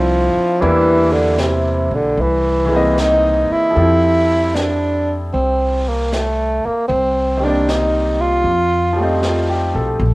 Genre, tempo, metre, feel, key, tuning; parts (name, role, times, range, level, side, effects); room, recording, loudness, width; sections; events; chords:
jazz ballad; 77 BPM; 4/4; swing 68% on 8ths; F major from 3.8 s; A4 = 440 Hz
breathy tenor saxophone; melody; 0.0-9.2 s; C3 to F4; -16 LUFS; right 1 dB; cassette tape, plate reverb
bright upright piano; accompaniment; 0.0-10.1 s; Eb3 to D#5; -20 LUFS; equal; cassette tape, plate reverb
upright bass; bass; 0.0-10.1 s; Bb1 to F2; -20 LUFS; equal
vintage brush drum kit; drums; 0.6-10.1 s; brushed snare drum, hi-hat, snare drum; -29 LUFS; equal; cassette tape
moderate studio reverb, RT60 0.6 s; home recording on cassette; -14 LUFS; side -21 dB against mid
0.0-3.8 A section; 3.8-10.1 B section
0.0 Fmaj13; 0.6 Em7b5; 2.2 C7alt; 3.8 Fmaj9; 6.9 Cm9; 8.5 F9